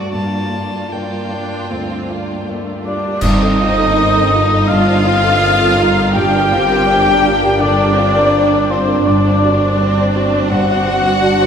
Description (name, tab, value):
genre	cinematic, emotional film score for orchestra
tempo	82 BPM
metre	4/4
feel	rubato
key	G minor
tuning	A4 = 441 Hz
part	clear studio violin section	melody	0.0-11.5 s	C4 to F#4	-22 LUFS	right 3 dB	none
part	warm violin	melody	0.0-2.5 s	D5 to A5	-30 LUFS	left 2 dB	none
part	rich studio violin section	second line	0.0-11.5 s	D4 to G5	-21 LUFS	equal	none
part	rich studio viola section	accompaniment	0.0-11.5 s	G3 to G4	-21 LUFS	right 2 dB	none
part	warm baby grand piano	accompaniment	0.0-11.5 s	D2 to D5	-21 LUFS	left 1 dB	none
part	warm studio cello section	bass	0.0-11.5 s	G2	-22 LUFS	equal	none
part	cymbal swell, clash cymbals and concert bass drum	percussion	0.1-4.6 s	none	-23 LUFS	equal	none
part	mellow French horn section	sustained chords	2.8-11.5 s	C4 to G4	-21 LUFS	right 2 dB	none
part	dark cor anglais	second line	2.9-11.5 s	C5 to G5	-16 LUFS	left 3 dB	none
part	warm studio double bass section	bass	3.2-11.5 s	G1	-21 LUFS	equal	none
room	wet huge ambient reverb, RT60 7.3 s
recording	in a vast, echoing space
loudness	-12 LUFS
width	side -7 dB against mid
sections	0.0-3.2 A section; 3.2-11.5 A section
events	band accent 3.2-4.0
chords	0.1 Gm7; 3.2 Fadd9/G; 6.2 Gm7; 9.1 D7/G